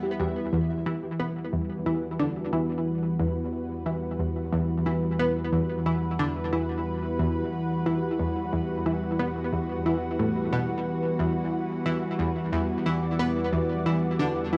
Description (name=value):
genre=ambient, sequencer-driven space music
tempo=90 BPM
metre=4/4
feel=straight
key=E minor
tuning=A4 = 439 Hz
part: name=lush unison pad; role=sustained chords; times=0.0-14.6 s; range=E3 to D5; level=-31 LUFS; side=equal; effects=chorus, cassette tape
part: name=soft round pluck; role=arpeggios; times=0.0-14.6 s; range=E4 to F#5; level=-44 LUFS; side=equal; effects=none
part: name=analog pluck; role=riff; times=0.0-14.6 s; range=E2 to B3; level=-31 LUFS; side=equal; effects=chorus, cassette tape, tape echo
part: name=analog drone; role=bass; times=0.0-14.6 s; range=E2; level=-40 LUFS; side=equal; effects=chorus
part: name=pulsing gated texture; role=texture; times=0.0-0.5 s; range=E5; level=-47 LUFS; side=equal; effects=chorus, built-in reverb, cassette tape
room=wet studio reverb, RT60 0.6 s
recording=home recording on cassette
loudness=-27 LUFS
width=mono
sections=0.5-14.6 A section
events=none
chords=0.0 Emadd9